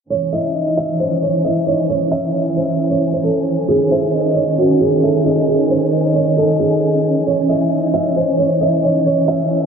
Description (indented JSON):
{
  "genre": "hip hop",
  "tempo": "134 BPM",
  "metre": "4/4",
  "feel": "half-time",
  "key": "C# harmonic minor",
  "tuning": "A4 = 440 Hz",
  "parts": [
    { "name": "felt-muted upright piano", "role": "melody", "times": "0.1-9.7 s", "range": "F#4 to E5", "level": "-17 LUFS", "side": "right 2 dB", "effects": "ping-pong delay" },
    { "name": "warm symphonic string section", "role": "sustained chords", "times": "0.1-9.7 s", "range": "D#3 to G#5", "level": "-18 LUFS", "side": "right 2 dB", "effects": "none" },
    { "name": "soft octave-layered synth lead", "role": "second line", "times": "0.3-9.7 s", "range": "C#5 to E5", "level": "-20 LUFS", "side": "left 3 dB", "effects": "chorus, tremolo, ping-pong delay" }
  ],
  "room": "wet lush hall reverb, RT60 2.9 s",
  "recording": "dreamy mix soaked in reverb, low-pass filter",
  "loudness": "-14 LUFS",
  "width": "side -6 dB against mid",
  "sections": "0.1-9.7 A section",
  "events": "filter sweep 0.1-9.7",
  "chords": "0.1 C#m; 3.7 G#sus4; 7.3 C#m"
}